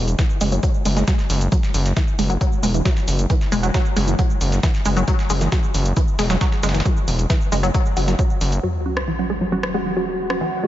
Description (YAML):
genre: driving peak-time techno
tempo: 135 BPM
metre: 4/4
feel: straight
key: unclear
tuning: A4 = 441 Hz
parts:
  - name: gritty driven synth bass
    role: bass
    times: 0.0-8.6 s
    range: E1 to F#1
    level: -19 LUFS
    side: equal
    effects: sidechain pumping
  - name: punchy analog drum machine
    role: drums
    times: 0.1-10.4 s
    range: hi-hat, rim click, shaker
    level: -28 LUFS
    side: equal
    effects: sidechain pumping on hats, sidechain pumping on perc
  - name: tight sequenced synth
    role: riff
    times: 0.2-10.7 s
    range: E3 to F#4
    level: -23 LUFS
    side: equal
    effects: chorus, overdrive, cassette tape, sidechain pumping, ping-pong delay
  - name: dusty soul sampler-style drum kit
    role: drums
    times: 0.2-8.5 s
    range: hi-hat, snare drum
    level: -32 LUFS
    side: equal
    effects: high-pass filter on hats, high-pass filter on snare, high-pass filter on room
  - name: electronic kick drum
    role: drums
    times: 0.2-8.3 s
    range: none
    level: -20 LUFS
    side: equal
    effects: none
  - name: analog drone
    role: drone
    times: 9.7-10.7 s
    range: F#3 to F#4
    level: -29 LUFS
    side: right 1 dB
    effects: chorus, sidechain pumping
  - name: sub drop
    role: sound effects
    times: 8.6-10.4 s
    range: none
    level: -29 LUFS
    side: equal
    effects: none
  - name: filtered dub chord stab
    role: stabs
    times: 8.9-10.7 s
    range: F#3 to F#4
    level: -25 LUFS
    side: right 4 dB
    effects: phaser, sidechain pumping, tape echo
room: moderate cathedral reverb, RT60 5.2 s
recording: dreamy mix soaked in reverb, nothing above 7.6 kHz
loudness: -17 LUFS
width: side -13 dB against mid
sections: 0.0-8.6 A section; 8.6-10.7 B section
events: impact 8.6-10.4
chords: 0.0 Esus2; 8.6 F#5